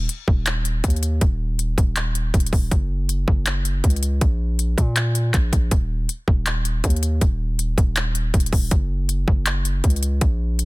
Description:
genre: hip hop, trap.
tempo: 160 BPM.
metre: 4/4.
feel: half-time.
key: unclear.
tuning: A4 = 440 Hz.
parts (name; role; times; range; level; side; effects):
distorted 808-style bass; bass; 0.0-10.7 s; Eb1 to Bb2; -22 LUFS; equal; distortion.
trap drum kit; drums; 0.1-10.7 s; handclaps, hi-hat, kick drum; -20 LUFS; equal; none.
room: little or no reverb.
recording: dense, heavily limited modern master.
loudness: -18 LUFS.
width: side -21 dB against mid.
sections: 0.0-10.7 A section.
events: none.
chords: none.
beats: 0.09 0.46 0.84 | 1.21 1.59 1.96 2.34 | 2.71 3.09 3.46 3.84 | 4.21 4.59 4.96 5.34 | 5.71 6.09 6.46 6.84 | 7.21 7.59 7.96 8.34 | 8.71 9.09 9.46 9.84 | 10.21 10.59.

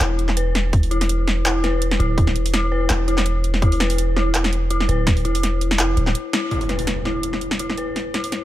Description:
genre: half-time drum and bass.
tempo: 166 BPM.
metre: 4/4.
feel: swing 54% on 16ths, half-time.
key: unclear.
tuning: A4 = 440 Hz.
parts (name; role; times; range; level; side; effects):
dark detuned synth bell; arpeggios; 0.0-8.4 s; E4 to B4; -24 LUFS; left 3 dB; chorus, low-pass filter, digital delay.
long sustained 808-style bass; bass; 0.0-6.1 s; D1 to F1; -20 LUFS; equal; none.
drum and bass drum kit; drums; 0.0-8.4 s; handclaps, hi-hat, snare drum; -23 LUFS; equal; overdrive.
electronic kick drum; drums; 0.7-5.1 s; none; -17 LUFS; equal; overdrive.
impact; sound effects; 6.5-8.0 s; none; -28 LUFS; equal; none.
room: light reverb.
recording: none.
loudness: -18 LUFS.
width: side -14 dB against mid.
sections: 0.0-6.5 A section; 6.5-8.4 B section.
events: drop 0.0-6.5; band accent 6.3; impact 6.5-8.0.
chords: 0.0 E5.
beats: 0.01 0.37 | 0.73 1.09 1.45 1.81 | 2.18 2.54 2.90 3.26 | 3.62 3.98 4.34 4.71 | 5.07 5.43 5.79 6.15 | 6.51 6.88 7.24 7.60 | 7.96 8.32.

